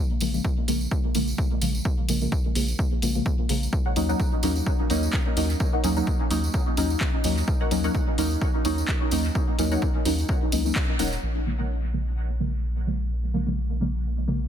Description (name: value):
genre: dub techno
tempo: 128 BPM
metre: 4/4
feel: swing 55% on 16ths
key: Bb minor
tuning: A4 = 440 Hz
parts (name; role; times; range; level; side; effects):
- deep mellow chord stab; stabs; 0.2-14.4 s; Db3 to Eb4; -27 LUFS; equal; chorus, phaser, sidechain pumping, dub echo
- round analog bass; bass; 0.2-14.5 s; Eb1 to Eb2; -27 LUFS; equal; sidechain pumping
- punchy analog drum machine; drums; 0.2-11.1 s; handclaps, hi-hat; -34 LUFS; left 1 dB; low-pass filter on hats, low-pass filter on snare, dub echo
- tambourine; percussion; 0.2-11.2 s; none; -35 LUFS; right 2 dB; none
- electronic kick drum; drums; 0.4-10.9 s; none; -26 LUFS; equal; none
- filtered dub chord stab; riff; 3.9-11.1 s; Eb4 to Gb5; -36 LUFS; left 2 dB; phaser, wide subtle chorus, sidechain pumping, dub echo
room: light reverb, digital ambience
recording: dense, heavily limited modern master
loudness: -22 LUFS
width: side -9 dB against mid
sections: 0.0-11.2 A section; 11.2-14.5 B section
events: band accent 10.8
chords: 0.0 Bbm7; 3.7 Ebm7; 11.2 Bbm7